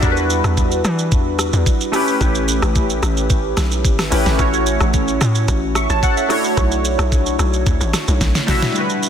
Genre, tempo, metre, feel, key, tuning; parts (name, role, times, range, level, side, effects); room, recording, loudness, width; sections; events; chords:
amapiano; 110 BPM; 4/4; straight; A4 = 440 Hz
warm analog keys; accompaniment; 0.0-9.1 s; G3 to C#6; -19 LUFS; equal; chorus, phaser
tight log drum bass; bass; 0.0-8.6 s; G1 to E3; -19 LUFS; equal
smooth R&B drum kit; drums; 0.0-9.1 s; hi-hat, kick drum, rim click, shaker, snare drum; -19 LUFS; equal; soft clipping on snare
light reverb, digital ambience; dense, heavily limited modern master; -14 LUFS; side -8 dB against mid
0.0-8.8 A section
drop 0.0-8.8; drum fill 8.2-8.8
0.0 Em9; 1.9 A9; 4.4 F#m7/A; 6.3 Bm11